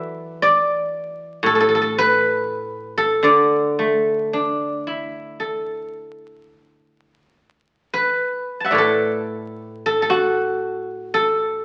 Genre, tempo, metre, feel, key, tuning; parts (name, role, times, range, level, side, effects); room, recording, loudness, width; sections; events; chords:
chinese traditional, Chinese solo plucked strings; 52-60 BPM; 4/4; rubato; D gong mode; A4 = 440 Hz
guzheng; solo; 0.0-11.6 s; A2 to A5; -20 LUFS; equal
wet large studio reverb, RT60 1.3 s; very old 78 rpm record, vinyl crackle; -20 LUFS; mono
0.0-7.9 A section; 7.9-11.6 B section